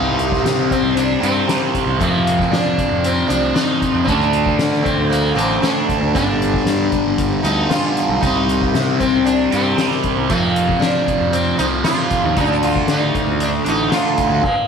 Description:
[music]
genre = psychedelic rock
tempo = 116 BPM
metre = 4/4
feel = straight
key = C dorian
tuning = A4 = 441 Hz
[part]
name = sitar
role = melody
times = 0.0-14.7 s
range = Bb3 to F4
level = -20 LUFS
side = right 1 dB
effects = slapback echo
[part]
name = fuzz guitar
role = riff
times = 0.0-14.4 s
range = F2 to D4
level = -18 LUFS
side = equal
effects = distortion, phaser
[part]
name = fuzz fingered electric bass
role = bass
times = 0.0-14.4 s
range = G1 to F3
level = -22 LUFS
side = right 1 dB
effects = overdrive
[part]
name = soft-mallet drum kit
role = drums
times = 0.2-14.6 s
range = crash cymbal, hi-hat, kick drum, snare drum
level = -23 LUFS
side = left 3 dB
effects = none
[sound]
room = light reverb, small room ambience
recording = 1960s-style stereo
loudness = -14 LUFS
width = side -6 dB against mid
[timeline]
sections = 0.0-14.7 A section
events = none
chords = 0.0 Cm; 2.0 Fsus4; 4.1 D5; 6.1 G5; 8.2 Cm; 10.3 Fsus4; 12.4 Dm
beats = 0.44 0.96 1.48 | 2.00 2.52 3.04 3.55 | 4.07 4.59 5.11 5.63 | 6.15 6.67 7.18 7.70 | 8.22 8.74 9.26 9.78 | 10.29 10.81 11.33 11.85 | 12.37 12.88 13.40 13.92 | 14.44

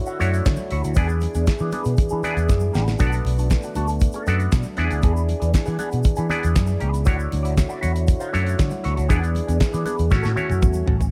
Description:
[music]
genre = disco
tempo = 118 BPM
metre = 4/4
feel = straight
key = unclear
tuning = A4 = 440 Hz
[part]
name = mellow French horn section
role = sustained chords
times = 0.0-11.0 s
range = D3 to C#5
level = -32 LUFS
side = equal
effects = none
[part]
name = semi-hollow electric guitar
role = accompaniment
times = 0.1-11.1 s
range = B3 to D5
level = -33 LUFS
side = equal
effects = wah, phaser
[part]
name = egg shaker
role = percussion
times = 0.1-11.1 s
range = none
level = -46 LUFS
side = equal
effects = none
[part]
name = auto-wah clav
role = accompaniment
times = 0.2-10.9 s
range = A3 to A5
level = -31 LUFS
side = equal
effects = overdrive
[part]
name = picked electric bass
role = bass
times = 0.2-11.1 s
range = A1 to E3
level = -24 LUFS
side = equal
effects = none
[part]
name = damped 70s drum kit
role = drums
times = 0.2-11.1 s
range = handclaps, hi-hat, kick drum, snare drum, toms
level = -23 LUFS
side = equal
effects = none
[part]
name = congas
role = percussion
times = 0.2-10.9 s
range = none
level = -36 LUFS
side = equal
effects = none
[sound]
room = small room ambience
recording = none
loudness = -21 LUFS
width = mono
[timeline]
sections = 0.0-11.1 A section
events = clav fill 2.0-3.0; drum fill 2.5-3.0, 10.1-11.1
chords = 0.0 Dmaj9; 1.0 E7; 3.0 Bm7; 4.8 E7; 7.1 Dmaj9; 9.1 E7; 10.1 A6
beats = 0.45 | 0.96 1.47 1.98 2.49 | 3.00 3.51 4.02 4.53 | 5.03 5.54 6.05 6.56 | 7.07 7.58 8.09 8.59 | 9.10 9.61 10.12 10.63

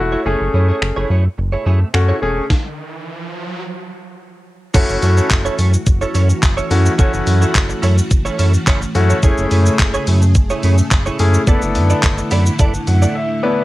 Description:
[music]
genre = dance-pop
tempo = 107 BPM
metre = 4/4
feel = straight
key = F# minor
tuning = A4 = 440 Hz
[part]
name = warm concert grand piano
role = accompaniment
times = 0.0-13.6 s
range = A3 to B5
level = -19 LUFS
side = left 2 dB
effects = sidechain pumping, cassette tape
[part]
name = round analog bass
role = bass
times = 0.0-13.1 s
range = E1 to F#2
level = -15 LUFS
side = equal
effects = sidechain pumping
[part]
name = direct-recorded clean electric guitar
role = riff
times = 0.1-13.2 s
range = A3 to D5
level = -22 LUFS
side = right 4 dB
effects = ensemble chorus, cassette tape
[part]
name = riser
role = sound effects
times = 1.4-3.6 s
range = none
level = -31 LUFS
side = right 2 dB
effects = none
[part]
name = gated 80s digital drum machine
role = drums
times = 0.8-13.1 s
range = crash cymbal, finger snaps, handclaps, hi-hat, kick drum, shaker, snare drum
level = -16 LUFS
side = equal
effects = gated reverb, gated reverb snare
[part]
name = string machine, full ensemble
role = sustained chords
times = 4.8-13.6 s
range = C#3 to G#4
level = -23 LUFS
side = equal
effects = ensemble chorus, sidechain pumping, cassette tape
[sound]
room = light reverb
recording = home recording on cassette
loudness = -13 LUFS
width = side -17 dB against mid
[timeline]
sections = 0.0-4.7 A section; 4.7-13.6 B section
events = riser 1.4-4.7; stop 2.5-4.7; grand piano fill 12.0-13.6; break 13.2-13.6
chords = 0.0 F#m7; 2.5 N.C.; 4.7 F#m7; 9.2 Amaj7/F#; 11.5 E7sus4/F#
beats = | 0.26 0.82 1.38 1.94 | 2.50 3.06 3.62 4.18 | 4.75 5.31 5.87 6.43 | 6.99 7.55 8.11 8.67 | 9.23 9.79 10.35 10.91 | 11.47 12.04 12.60 13.16

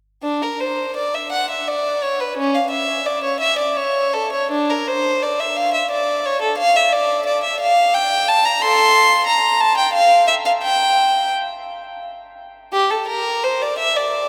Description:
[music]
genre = classical, baroque-style suite movement for unaccompanied violin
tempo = 52-61 BPM (dotted quarters)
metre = 6/8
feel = rubato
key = D minor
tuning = A4 = 440 Hz
[part]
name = rich violin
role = solo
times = 0.2-14.3 s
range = C#4 to C6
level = -18 LUFS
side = equal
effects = none
[sound]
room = wet cathedral reverb, RT60 6.1 s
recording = in a vast, echoing space, faint mains hum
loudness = -18 LUFS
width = mono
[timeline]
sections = 0.2-14.3 A section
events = none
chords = none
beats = | 0.23 1.32 | 2.38 3.42 | 4.52 5.58 | 6.60 7.62 | 8.62 9.62 | 10.63 11.68 | 12.73 13.79

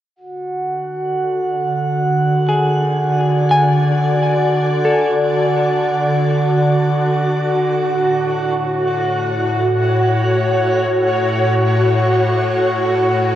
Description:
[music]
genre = ambient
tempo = free time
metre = none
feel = none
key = D lydian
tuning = A4 = 440 Hz
[part]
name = evolving wavetable pad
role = sustained chords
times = 1.0-13.4 s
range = A2 to D5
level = -16 LUFS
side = equal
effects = ensemble chorus, built-in reverb
[part]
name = glass harmonica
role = texture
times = 0.2-13.4 s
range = F#4 to F#5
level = -20 LUFS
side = right 1 dB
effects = none
[part]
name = semi-hollow electric guitar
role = arpeggios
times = 2.5-8.8 s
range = G#4 to G#5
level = -21 LUFS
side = left 1 dB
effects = tape echo
[sound]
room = wet shimmer reverb, RT60 7.8 s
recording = worn, warbling old tape, cassette tape, warbly pitch drift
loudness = -14 LUFS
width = side -12 dB against mid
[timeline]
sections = 0.2-13.4 A section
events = filter sweep on ambient pad 0.2-13.4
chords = 0.2 D; 7.8 A6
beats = free time

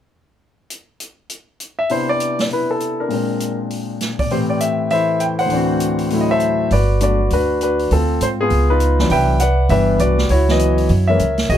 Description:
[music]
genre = jazz piano trio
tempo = 200 BPM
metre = 4/4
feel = swing 62% on 8ths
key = G major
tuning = A4 = 440 Hz
[part]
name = open jazz drum kit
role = drums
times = 0.7-11.6 s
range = hi-hat, kick drum, snare drum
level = -27 LUFS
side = right 1 dB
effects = none
[part]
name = clear concert grand piano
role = melody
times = 1.8-11.6 s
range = D2 to G5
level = -16 LUFS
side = left 1 dB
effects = none
[part]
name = upright bass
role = bass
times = 6.7-11.6 s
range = G1 to Ab2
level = -17 LUFS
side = right 1 dB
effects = none
[sound]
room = little or no reverb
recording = close, detailed microphones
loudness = -15 LUFS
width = side -10 dB against mid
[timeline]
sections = 0.7-1.9 A section; 1.9-6.7 B section; 6.7-11.6 C section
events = none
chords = 0.7 N.C.; 1.9 Cmaj9; 3.1 Bb9; 4.3 Am7; 5.5 D9; 6.7 Gmaj7; 7.9 Dm7; 8.5 C#9; 9.1 Cmaj9#11; 10.3 C#m11; 10.9 F#7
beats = | 0.70 1.00 1.30 1.60 | 1.90 2.20 2.50 2.80 | 3.10 3.41 3.71 4.01 | 4.31 4.61 4.91 5.21 | 5.51 5.81 6.11 6.41 | 6.71 7.01 7.31 7.61 | 7.91 8.21 8.51 8.80 | 9.10 9.40 9.70 10.00 | 10.30 10.60 10.90 11.20 | 11.50

